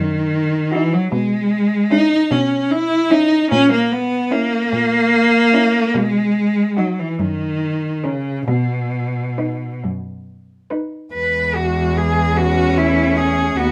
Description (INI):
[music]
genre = classical, lyrical piece for cello ensemble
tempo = 44-51 BPM (dotted quarters)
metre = 6/8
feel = rubato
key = B major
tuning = A4 = 440 Hz
[part]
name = rich cello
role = accompaniment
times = 0.0-13.7 s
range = B2 to E4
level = -19 LUFS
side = equal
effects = none
[part]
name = rich cello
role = bass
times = 0.0-13.7 s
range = D#2 to B2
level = -24 LUFS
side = equal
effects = none
[part]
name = rich cello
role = melody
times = 0.7-13.7 s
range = E4 to B4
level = -23 LUFS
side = equal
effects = none
[part]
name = rich cello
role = second line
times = 0.7-13.7 s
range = B3 to D#4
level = -25 LUFS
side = equal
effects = none
[sound]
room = light reverb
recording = none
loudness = -17 LUFS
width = mono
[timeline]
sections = 0.0-11.1 A section; 11.1-13.7 B section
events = none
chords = 0.0 B (rootless); 1.1 C#m7/B; 3.5 A#dim; 5.9 B; 7.2 F#; 8.5 B; 11.1 E